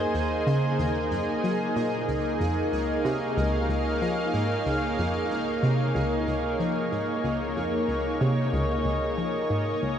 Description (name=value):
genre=ambient, sequencer-driven space music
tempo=93 BPM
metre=4/4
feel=straight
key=unclear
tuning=A4 = 440 Hz
part: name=lush unison pad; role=sustained chords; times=0.0-10.0 s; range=Bb3 to Ab5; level=-26 LUFS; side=equal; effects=chorus
part: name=analog pluck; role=riff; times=0.0-10.0 s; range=Db2 to Gb3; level=-28 LUFS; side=equal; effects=chorus, ping-pong delay
part: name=pulsing gated texture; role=texture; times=0.0-10.0 s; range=Ab4 to Ab5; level=-40 LUFS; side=right 3 dB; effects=chorus, built-in reverb
room=wet huge ambient reverb, RT60 7.9 s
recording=worn, warbling old tape, cassette tape, warbly pitch drift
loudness=-24 LUFS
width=side -9 dB against mid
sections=0.0-10.0 A section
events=fade-in on synth texture 0.0-10.0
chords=0.0 Ebm; 2.1 Dbadd9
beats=0.15 0.79 1.44 | 2.08 2.73 3.37 4.02 | 4.66 5.31 5.95 6.60 | 7.24 7.89 8.53 9.18 | 9.82